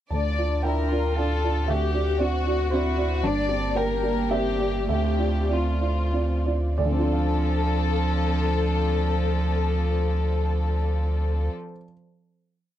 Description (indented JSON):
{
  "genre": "neoclassical piano and strings",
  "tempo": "90-116 BPM",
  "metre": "3/4",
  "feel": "rubato",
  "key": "D minor",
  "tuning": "A4 = 439 Hz",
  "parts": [
    { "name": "warm chamber violin section", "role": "melody", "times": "0.1-11.5 s", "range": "F4 to D5", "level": "-28 LUFS", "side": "left 6 dB", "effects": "none" },
    { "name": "dark upright piano", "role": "accompaniment", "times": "0.1-11.9 s", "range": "D2 to A5", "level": "-28 LUFS", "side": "right 2 dB", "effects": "none" },
    { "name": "warm chamber string section", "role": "sustained chords", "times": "0.1-11.5 s", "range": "Bb3 to F#5", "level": "-37 LUFS", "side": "right 1 dB", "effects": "none" },
    { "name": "warm sub bass", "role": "bass", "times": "0.1-11.5 s", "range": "G1 to D2", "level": "-25 LUFS", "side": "equal", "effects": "none" },
    { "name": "warm cello", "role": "second line", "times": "0.6-11.5 s", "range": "F3 to G4", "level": "-32 LUFS", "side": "right 6 dB", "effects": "none" }
  ],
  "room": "little or no reverb",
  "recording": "dry, close 1970s-style studio recording",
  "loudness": "-22 LUFS",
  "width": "side -12 dB against mid",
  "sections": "0.1-6.8 theme; 6.8-10.7 final chord",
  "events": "slowing down 2.5-6.8",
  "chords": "0.1 Dm; 1.7 D7; 3.2 Gmadd9; 4.9 Dm7",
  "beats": "| 0.11 0.64 1.17 | 1.69 2.21 2.73 | 3.24 3.77 4.32 | 4.89 5.50 6.13 | 6.79 7.45 8.11 | 8.77 9.43 10.08"
}